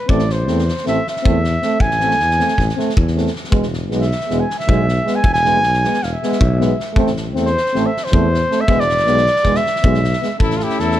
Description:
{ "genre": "balkan folk, Balkan brass band", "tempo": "314 BPM (eighths)", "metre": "9/8", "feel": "straight", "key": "unclear", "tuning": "A4 = 440 Hz", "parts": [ { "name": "warm flugelhorn", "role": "melody", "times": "0.0-11.0 s", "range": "G4 to G#5", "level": "-18 LUFS", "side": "equal", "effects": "analog delay" }, { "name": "clear euphonium", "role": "accompaniment", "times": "0.1-11.0 s", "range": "G#3 to A3", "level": "-23 LUFS", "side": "right 7 dB", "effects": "none" }, { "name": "dark trombone", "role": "accompaniment", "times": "0.1-11.0 s", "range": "B3 to C#4", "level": "-25 LUFS", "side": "left 8 dB", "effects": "none" }, { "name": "mellow tuba", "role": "bass", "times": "0.1-11.0 s", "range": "E1 to E2", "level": "-20 LUFS", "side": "equal", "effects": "none" }, { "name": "loose indie drum kit", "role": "percussion", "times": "0.1-11.0 s", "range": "kick drum, snare drum", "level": "-21 LUFS", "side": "equal", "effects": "none" }, { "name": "brilliant trumpet", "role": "second line", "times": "10.4-11.0 s", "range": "E4 to F4", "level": "-22 LUFS", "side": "left 6 dB", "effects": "none" } ], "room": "little or no reverb", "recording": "none", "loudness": "-14 LUFS", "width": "side -12 dB against mid", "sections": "0.0-10.4 A section", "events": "flugelhorn solo 0.0-10.4", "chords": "0.1 Am; 3.5 E; 7.0 Am; 8.7 E; 10.4 A" }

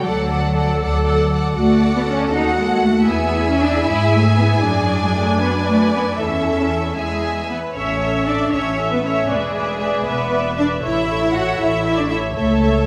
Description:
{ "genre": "quick classical-period movement for string orchestra", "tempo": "78 BPM (dotted quarters)", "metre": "6/8", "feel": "straight", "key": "A major", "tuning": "A4 = 441 Hz", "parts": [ { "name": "warm symphonic violin section", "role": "melody", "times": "0.0-12.9 s", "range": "E5 to G#5", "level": "-29 LUFS", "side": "equal", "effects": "none" }, { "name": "clear studio violin section", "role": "second line", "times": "0.0-12.9 s", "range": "G#4 to F#5", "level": "-25 LUFS", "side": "equal", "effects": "none" }, { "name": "warm studio viola section", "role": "accompaniment", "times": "0.0-12.9 s", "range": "D4 to E5", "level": "-26 LUFS", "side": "equal", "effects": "none" }, { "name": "warm symphonic cello section", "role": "bass", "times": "0.0-12.9 s", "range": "F#3 to F#4", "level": "-23 LUFS", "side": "equal", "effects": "none" }, { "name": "clear symphonic double bass section", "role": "bass", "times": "0.1-12.9 s", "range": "E1 to G#2", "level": "-24 LUFS", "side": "equal", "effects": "none" } ], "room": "wet scoring stage reverb, RT60 1.8 s", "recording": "recorded in a church or concert hall", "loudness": "-18 LUFS", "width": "mono", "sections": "0.0-7.8 A section; 7.8-12.9 B section", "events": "none", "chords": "0.1 D; 1.6 Bm7/D (rootless); 2.3 D#dim; 3.1 E; 4.6 D/F#; 6.2 A/E; 7.0 E; 7.8 A; 9.3 E7; 10.8 A; 12.4 A/C#" }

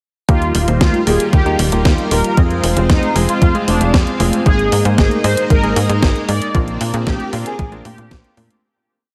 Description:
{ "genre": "italo disco", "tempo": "115 BPM", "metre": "4/4", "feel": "straight", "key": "unclear", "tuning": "A4 = 435 Hz", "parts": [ { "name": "mellow synth brass", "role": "melody", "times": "0.3-8.1 s", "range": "D4 to D5", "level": "-23 LUFS", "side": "equal", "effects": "chorus, phaser, tape echo" }, { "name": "string machine, full ensemble", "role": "sustained chords", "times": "0.3-8.6 s", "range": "G3 to F5", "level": "-25 LUFS", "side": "equal", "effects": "ensemble chorus" }, { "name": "warm electric grand piano", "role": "stabs", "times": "0.3-8.6 s", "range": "Ab3 to C5", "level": "-24 LUFS", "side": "equal", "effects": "none" }, { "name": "tight sequencer bass", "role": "bass", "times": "0.3-8.5 s", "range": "Eb1 to Bb2", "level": "-20 LUFS", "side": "equal", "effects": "none" }, { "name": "clean 12-bit digital drum machine", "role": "drums", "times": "0.3-8.6 s", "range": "congas, hi-hat, snare drum", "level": "-23 LUFS", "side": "equal", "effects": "overdrive, studio reverb" }, { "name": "electronic kick drum", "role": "drums", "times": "0.3-8.2 s", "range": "none", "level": "-16 LUFS", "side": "equal", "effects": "overdrive, studio reverb" } ], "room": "light reverb", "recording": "heavily compressed radio sound", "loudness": "-15 LUFS", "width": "mono", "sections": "0.3-8.6 chorus", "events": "fade-out 5.9-8.6", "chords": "0.3 Ebadd9; 2.4 Fm; 4.5 Absus2; 6.5 Bbadd9" }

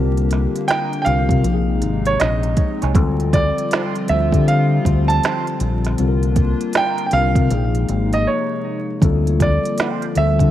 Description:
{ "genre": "R&B, neo-soul", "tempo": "79 BPM", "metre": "4/4", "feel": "swing 64% on 16ths", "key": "D phrygian", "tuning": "A4 = 439 Hz", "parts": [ { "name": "mellow tine electric piano", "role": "accompaniment", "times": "0.0-10.5 s", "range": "C3 to C5", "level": "-23 LUFS", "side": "left 8 dB", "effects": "medium stereo tremolo" }, { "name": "hollow soft pad", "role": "sustained chords", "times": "0.0-10.5 s", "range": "C3 to G4", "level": "-26 LUFS", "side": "equal", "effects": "chorus" }, { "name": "deep dub fingered electric bass", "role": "bass", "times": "0.0-10.5 s", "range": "Ab1 to D3", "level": "-18 LUFS", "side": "equal", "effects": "none" }, { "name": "organic electronic drum kit", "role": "drums", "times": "0.2-10.5 s", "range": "finger snaps, hi-hat, kick drum, snare drum", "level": "-20 LUFS", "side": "right 1 dB", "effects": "none" }, { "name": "clear baby grand piano", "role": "melody", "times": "0.7-10.5 s", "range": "Db5 to A5", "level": "-22 LUFS", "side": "right 3 dB", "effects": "tape echo" }, { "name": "electric guitar through a small old amp", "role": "second line", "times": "0.7-10.0 s", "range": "Eb4 to Eb5", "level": "-30 LUFS", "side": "right 11 dB", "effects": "wah" } ], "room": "light reverb, digital ambience", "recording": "1960s-style stereo with parts hard left and right, vinyl crackle", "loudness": "-15 LUFS", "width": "side -12 dB against mid", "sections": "0.0-10.5 A section", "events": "break 8.3-9.0", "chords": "0.0 C9sus4; 1.4 Bb9sus4; 2.9 Dm7; 6.0 C9sus4; 7.5 Bb9sus4; 9.0 Dm7" }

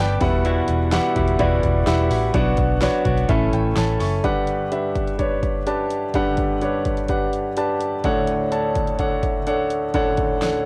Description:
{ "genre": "piano-driven pop", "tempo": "126 BPM", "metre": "4/4", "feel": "straight", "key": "unclear", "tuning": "A4 = 440 Hz", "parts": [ { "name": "clear grand piano", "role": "accompaniment", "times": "0.0-10.7 s", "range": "D2 to C#6", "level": "-23 LUFS", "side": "equal", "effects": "none" }, { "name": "direct-recorded clean electric guitar", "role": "riff", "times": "0.0-4.2 s", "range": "E2 to A4", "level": "-28 LUFS", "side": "equal", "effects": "none" }, { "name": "vintage muted fingered electric bass", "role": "bass", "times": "0.0-4.2 s", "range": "E1 to B1", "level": "-24 LUFS", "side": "equal", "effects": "none" }, { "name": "deep house drum kit", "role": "drums", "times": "0.2-10.5 s", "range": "hi-hat, kick drum, snare drum", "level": "-28 LUFS", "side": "equal", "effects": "cassette tape" } ], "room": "light reverb", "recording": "home recording on cassette", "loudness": "-21 LUFS", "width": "mono", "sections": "0.0-4.2 A section; 4.2-10.7 B section", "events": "none", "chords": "0.2 Emadd9; 2.3 Bm; 3.3 A; 4.2 Gmaj7; 8.0 Dmaj7" }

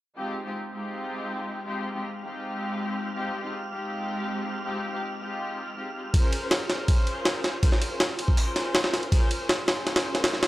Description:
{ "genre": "drum and bass, jungle", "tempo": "161 BPM", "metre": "4/4", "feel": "straight", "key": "F minor", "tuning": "A4 = 438 Hz", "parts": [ { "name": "muted studio string section", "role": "sustained chords", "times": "0.2-10.5 s", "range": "Ab3 to C5", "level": "-31 LUFS", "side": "left 1 dB", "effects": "vintage 12-bit sampler grit" }, { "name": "wind-like tuned noise texture", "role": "texture", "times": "1.5-10.5 s", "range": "F6", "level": "-42 LUFS", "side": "right 2 dB", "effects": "built-in reverb" }, { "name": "jungle sampler-style drum kit", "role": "drums", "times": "6.1-10.5 s", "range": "hi-hat, kick drum, ride cymbal, snare drum", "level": "-22 LUFS", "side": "equal", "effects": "none" } ], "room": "light reverb", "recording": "dry, gritty hardware recording", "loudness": "-25 LUFS", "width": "side -16 dB against mid", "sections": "0.2-10.5 A section", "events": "none", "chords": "0.2 Fm9; 6.1 Bbm9" }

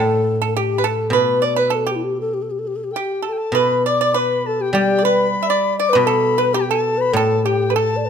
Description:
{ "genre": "chinese traditional, Chinese chamber ensemble", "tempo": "100 BPM", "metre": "2/4", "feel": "rubato", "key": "unclear", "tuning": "A4 = 440 Hz", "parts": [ { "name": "mellow low xiao", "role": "melody", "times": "0.0-8.1 s", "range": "E4 to D5", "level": "-19 LUFS", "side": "left 3 dB", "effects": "none" }, { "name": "pipa", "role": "second line", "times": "0.0-8.0 s", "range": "G4 to E5", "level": "-22 LUFS", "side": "right 8 dB", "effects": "none" }, { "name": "guzheng", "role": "accompaniment", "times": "0.0-8.1 s", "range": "A2 to G3", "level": "-22 LUFS", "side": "right 1 dB", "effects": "none" }, { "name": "bright reedy large dizi", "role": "second line", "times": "2.9-8.1 s", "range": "G5 to D6", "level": "-23 LUFS", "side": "left 7 dB", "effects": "none" } ], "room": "moderate recital hall reverb, RT60 1.4 s", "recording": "close, detailed microphones", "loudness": "-16 LUFS", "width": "side -7 dB against mid", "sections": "0.0-3.5 A section; 3.5-8.1 B section", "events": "none", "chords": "none" }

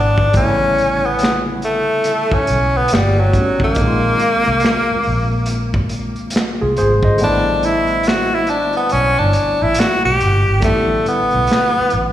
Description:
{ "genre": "R&B, neo-soul", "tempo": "70 BPM", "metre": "4/4", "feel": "swing 62% on 16ths", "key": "unclear", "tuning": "A4 = 440 Hz", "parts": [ { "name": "bright tenor saxophone", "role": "melody", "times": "0.0-12.1 s", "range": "F#3 to G4", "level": "-16 LUFS", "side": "equal", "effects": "slapback echo, tape echo" }, { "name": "barky tine electric piano", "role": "accompaniment", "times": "0.0-12.1 s", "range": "C#3 to Eb5", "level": "-22 LUFS", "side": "equal", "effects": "medium tremolo, slapback echo" }, { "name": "vintage muted fingered electric bass", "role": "bass", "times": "0.0-12.1 s", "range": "G1 to C2", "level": "-19 LUFS", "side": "equal", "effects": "none" }, { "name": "crunchy breakbeat drum kit", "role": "drums", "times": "0.2-12.1 s", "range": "finger snaps, hi-hat, kick drum, snare drum", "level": "-20 LUFS", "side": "equal", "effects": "slapback echo" } ], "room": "light reverb, studio reverb", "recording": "live gig heard through the venue's PA, recital hall reverb", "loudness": "-13 LUFS", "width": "side -12 dB against mid", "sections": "0.0-10.6 A section; 10.6-12.1 B section", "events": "tenor saxophone solo 0.0-10.6; kick muted 7.2-10.6", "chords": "0.0 A9sus4; 3.8 Bb9sus4; 7.2 A9sus4" }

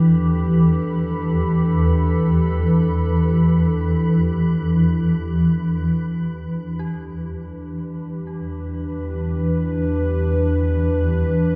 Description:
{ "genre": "dark ambient drone", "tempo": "free time", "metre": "none", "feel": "none", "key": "E minor", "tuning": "A4 = 440 Hz", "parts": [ { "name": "dark analog pad", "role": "sustained chords", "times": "0.0-11.6 s", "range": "E3 to B4", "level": "-28 LUFS", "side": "equal", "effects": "chorus" }, { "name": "dark detuned synth bell", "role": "arpeggios", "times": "0.0-11.6 s", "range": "E4 to G4", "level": "-50 LUFS", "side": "equal", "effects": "none" }, { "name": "swarming drone", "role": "drone", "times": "0.0-11.6 s", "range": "E2 to E3", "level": "-21 LUFS", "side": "equal", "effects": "built-in reverb" } ], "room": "moderate spring reverb, RT60 2.5 s", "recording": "echo-heavy mix", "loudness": "-20 LUFS", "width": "mono", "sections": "0.0-6.3 A section; 6.3-11.6 B section", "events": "fade-out on analog synth pad 0.0-6.3; fade-in on synth bell 6.3-11.6", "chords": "0.0 Em" }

